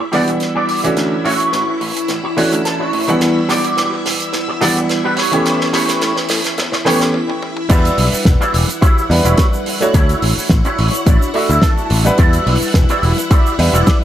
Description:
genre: nu-disco, nu disco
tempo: 107 BPM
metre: 4/4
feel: swing 54% on 16ths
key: E dorian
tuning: A4 = 442 Hz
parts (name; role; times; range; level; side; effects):
- string machine, full ensemble; sustained chords; 0.0-14.0 s; E4 to F#5; -23 LUFS; left 1 dB; ensemble chorus, sidechain pumping
- electric guitar with an envelope filter; riff; 0.0-13.9 s; D4 to A5; -20 LUFS; right 1 dB; ensemble chorus, low-pass filter, analog delay
- clear baby grand piano; accompaniment; 0.1-14.0 s; E3 to C#6; -19 LUFS; right 1 dB; vintage 12-bit sampler grit, sidechain pumping, analog delay
- picked electric bass; bass; 0.1-13.8 s; E1 to A2; -17 LUFS; equal; high-pass filter
- damped 70s drum kit; drums; 0.1-14.0 s; crash cymbal, hi-hat, shaker, snare drum, toms; -20 LUFS; right 1 dB; high-pass filter on hats, small room reverb, high-pass filter on toms, high-pass filter on cymbals, high-pass filter on snare, high-pass filter on perc, high-pass filter on room, analog delay
- electronic kick drum; drums; 7.7-14.0 s; none; -12 LUFS; equal; small room reverb
room: moderate spring reverb, RT60 1.2 s, small room ambience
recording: echo-heavy mix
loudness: -12 LUFS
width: side -11 dB against mid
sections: 0.0-7.7 A section; 7.7-14.0 B section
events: build-up 0.0-7.7; drum fill 0.0-7.1, 7.1-7.7; clean electric guitar fill 2.1-3.2, 10.5-12.2; break 7.1-7.7; drop 7.7-14.0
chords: 0.0 Em9; 1.0 Dmaj9; 3.2 Em9; 5.2 A9; 7.7 Em9; 9.9 Dmaj9; 12.2 Em9

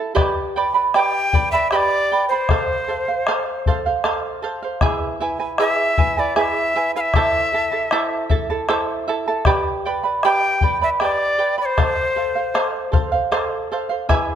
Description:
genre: andean folk, Andean ensemble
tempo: 78 BPM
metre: 3/4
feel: straight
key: unclear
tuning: A4 = 440 Hz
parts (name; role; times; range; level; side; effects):
- charango; accompaniment; 0.0-14.4 s; E4 to B5; -21 LUFS; right 4 dB; none
- bombo; percussion; 0.2-14.3 s; none; -21 LUFS; left 3 dB; none
- breathy bright quena; melody; 1.0-13.1 s; C5 to G5; -20 LUFS; left 2 dB; none
room: moderate scoring stage reverb, RT60 1.8 s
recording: close, detailed microphones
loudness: -17 LUFS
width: side -9 dB against mid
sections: 0.2-14.4 A section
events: break 0.0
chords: 0.2 G; 2.5 F; 4.8 E; 7.1 Am; 9.5 G; 11.8 F

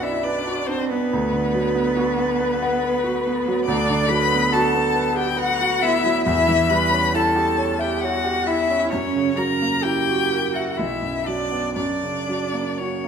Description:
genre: classical, slow romantic movement for piano trio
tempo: 58-71 BPM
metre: 3/4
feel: rubato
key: B minor from 3.7 s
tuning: A4 = 440 Hz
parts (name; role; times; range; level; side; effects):
- clear violin; melody; 0.0-13.1 s; B4 to B5; -22 LUFS; left 5 dB; none
- rich cello; second line; 0.0-13.1 s; B3 to B4; -26 LUFS; right 6 dB; none
- clear concert grand piano; accompaniment; 0.0-13.1 s; B1 to F#5; -22 LUFS; right 2 dB; none
room: wet recital hall reverb, RT60 1.4 s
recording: none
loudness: -18 LUFS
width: side -7 dB against mid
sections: 0.0-13.1 A section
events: none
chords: 0.0 Bm; 1.1 Bm/D; 6.3 C#dim/E; 8.9 F#7; 10.8 Bm; 11.8 F#

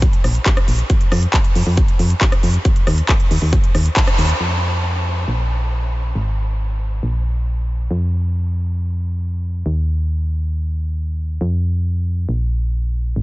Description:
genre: uplifting trance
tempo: 137 BPM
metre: 4/4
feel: straight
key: F minor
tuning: A4 = 440 Hz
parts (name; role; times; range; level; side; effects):
- solid FM bass; bass; 0.0-13.2 s; Ab1 to F2; -18 LUFS; equal; tube saturation, sidechain pumping
- big-room dance drum kit; drums; 0.0-4.5 s; crash cymbal, handclaps, hi-hat, rim click; -22 LUFS; equal; sidechain pumping on hats, low-pass filter on hats, low-pass filter on snare, sidechain pumping on cymbals, low-pass filter on cymbals
- electronic kick drum; drums; 0.0-4.1 s; none; -15 LUFS; equal; none
room: light reverb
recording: nothing above 7.8 kHz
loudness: -16 LUFS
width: side -19 dB against mid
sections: 0.0-4.4 A section; 4.4-13.2 B section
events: band accent 4.0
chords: none

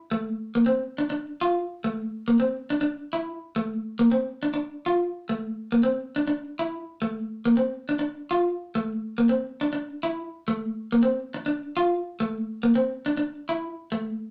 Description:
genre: highlife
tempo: 139 BPM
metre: 4/4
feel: swing 53% on 16ths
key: D minor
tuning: A4 = 440 Hz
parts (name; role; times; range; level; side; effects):
- electric guitar at the edge of break-up; solo; 0.1-14.1 s; A3 to F4; -26 LUFS; equal; none
room: wet studio reverb, RT60 0.6 s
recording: none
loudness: -27 LUFS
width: mono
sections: 0.1-13.9 A section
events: none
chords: none

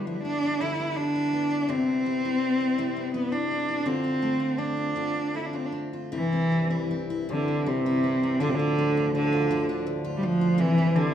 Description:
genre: celtic folk, Celtic slow air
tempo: 82 BPM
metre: 3/4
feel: rubato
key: unclear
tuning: A4 = 440 Hz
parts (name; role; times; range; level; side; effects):
- rich cello; melody; 0.0-11.1 s; C3 to E4; -24 LUFS; equal; none
- picked steel-string acoustic guitar; accompaniment; 0.0-11.1 s; C3 to F4; -31 LUFS; left 2 dB; none
- pedal harmonium; sustained chords; 6.1-11.1 s; C2 to F3; -34 LUFS; equal; none
room: moderate concert hall reverb, RT60 2.3 s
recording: minimal, uncompressed stereo recording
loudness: -23 LUFS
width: side -10 dB against mid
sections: 0.0-6.1 A section; 6.1-11.1 B section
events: none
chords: 0.0 G6/D; 1.7 Cmaj7; 3.9 Dm7; 6.1 C; 8.4 Dm; 10.6 C

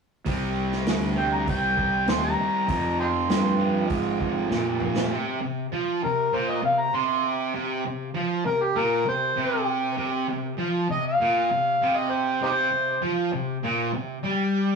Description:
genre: blues rock power trio and southern rock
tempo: 99 BPM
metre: 4/4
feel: straight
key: C minor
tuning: A4 = 439 Hz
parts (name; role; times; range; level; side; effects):
- fuzz guitar; riff; 0.3-14.8 s; F2 to C4; -26 LUFS; right 1 dB; distortion
- fuzz fingered electric bass; bass; 0.3-5.1 s; C2 to Bb2; -27 LUFS; right 1 dB; overdrive
- vintage drum kit; drums; 0.3-5.1 s; hi-hat, kick drum, snare drum, toms; -29 LUFS; right 1 dB; none
- overdriven harmonica; melody; 1.2-13.0 s; Eb4 to C6; -24 LUFS; equal; tape echo
room: moderate studio reverb, RT60 0.6 s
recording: rough rehearsal-room recording, tube saturation, small room ambience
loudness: -22 LUFS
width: side -5 dB against mid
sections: 0.3-5.1 A section; 5.1-14.8 B section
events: drum fill 4.5-5.1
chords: 0.3 Cm; 2.7 Fm; 5.1 C5

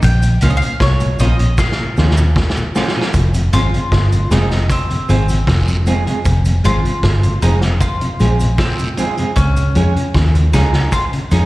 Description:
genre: roots reggae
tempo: 77 BPM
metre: 4/4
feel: straight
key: F minor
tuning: A4 = 440 Hz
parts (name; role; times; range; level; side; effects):
- bowl-back mandolin; melody; 0.0-11.5 s; C4 to G5; -23 LUFS; left 1 dB; slapback echo
- fingered electric bass; bass; 0.0-11.5 s; F1 to F2; -13 LUFS; equal; none
- vintage drum kit; drums; 0.0-11.5 s; hi-hat, kick drum, snare drum; -19 LUFS; equal; none
- cabasa and guiro; percussion; 0.0-11.5 s; none; -33 LUFS; right 3 dB; none
- mellow tonewheel organ; accompaniment; 0.2-11.4 s; F2 to Db4; -22 LUFS; left 2 dB; slow rotary speaker, slapback echo
- semi-hollow electric guitar; accompaniment; 0.4-11.5 s; F3 to Ab4; -23 LUFS; right 4 dB; spring reverb, slapback echo, tape echo
room: little or no reverb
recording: live gig heard through the venue's PA, recital hall reverb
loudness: -12 LUFS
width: side -18 dB against mid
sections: 0.0-3.1 A section; 3.1-11.5 B section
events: drum fill 1.6-3.1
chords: 0.0 Bbm; 3.1 Fm; 9.4 Db

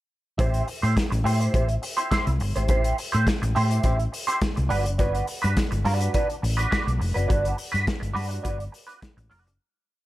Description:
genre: disco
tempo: 104 BPM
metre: 4/4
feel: straight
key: A dorian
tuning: A4 = 440 Hz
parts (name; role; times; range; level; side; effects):
- clean electric guitar; accompaniment; 0.4-9.5 s; D4 to C5; -27 LUFS; right 2 dB; wah, ensemble chorus
- hollow-body short-scale fingered electric bass; bass; 0.4-9.6 s; F1 to A2; -24 LUFS; equal; none
- warm soul drum kit; drums; 0.4-9.6 s; hi-hat, kick drum, snare drum; -27 LUFS; equal; gated reverb
room: studio reverb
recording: none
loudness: -22 LUFS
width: side -16 dB against mid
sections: 0.4-9.6 verse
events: fade-out 7.3-9.6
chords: 0.4 Am7; 4.7 Gmaj7

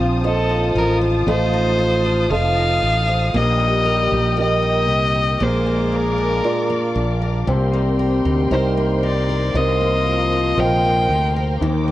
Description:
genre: pop ballad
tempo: 58 BPM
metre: 4/4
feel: straight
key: unclear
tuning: A4 = 440 Hz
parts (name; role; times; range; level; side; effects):
- warm French horn section; second line; 0.0-11.9 s; Eb3 to Ab4; -26 LUFS; left 2 dB; none
- dark concert grand piano; accompaniment; 0.0-11.9 s; Eb3 to Eb5; -23 LUFS; right 2 dB; none
- dark studio string section; sustained chords; 0.0-11.9 s; Bb4 to Eb6; -27 LUFS; left 1 dB; none
- picked steel-string acoustic guitar; arpeggios; 0.0-11.9 s; Bb2 to C5; -28 LUFS; left 4 dB; none
- fretless electric bass; bass; 0.0-11.9 s; F1 to Eb2; -20 LUFS; equal; none
- warm violin; melody; 0.3-11.6 s; A4 to G5; -21 LUFS; left 1 dB; none
room: light reverb, small room ambience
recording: worn, warbling old tape, cassette tape, warbly pitch drift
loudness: -16 LUFS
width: side -14 dB against mid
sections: 0.0-11.9 A section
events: none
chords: 0.0 F7/A; 3.3 Eb/Bb; 5.4 Bb; 7.5 Cm7

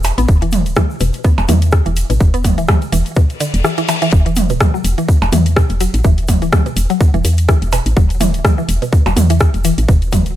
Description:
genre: minimal techno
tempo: 125 BPM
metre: 4/4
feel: swing 56% on 16ths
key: unclear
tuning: A4 = 440 Hz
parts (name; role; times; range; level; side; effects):
- woody FM bass; bass; 0.0-10.3 s; D1 to E2; -15 LUFS; equal; sidechain pumping
- garage drum kit; drums; 0.0-10.3 s; hi-hat, rim click; -21 LUFS; left 1 dB; studio reverb
- egg shaker; percussion; 0.0-10.3 s; none; -30 LUFS; right 4 dB; none
- electronic percussion blips and toms; percussion; 0.0-10.2 s; none; -20 LUFS; right 3 dB; studio reverb, ping-pong delay
- mallet-like synth pluck; riff; 0.2-10.1 s; B2 to B3; -20 LUFS; left 1 dB; chorus, phaser, sidechain pumping, digital delay
- electronic kick drum; drums; 0.3-10.2 s; none; -12 LUFS; equal; studio reverb
- reverse cymbal; sound effects; 3.4-4.1 s; none; -24 LUFS; left 5 dB; none
room: little or no reverb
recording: none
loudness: -11 LUFS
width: side -13 dB against mid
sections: 0.0-10.4 A section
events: reverse cymbal 3.4-4.1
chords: none

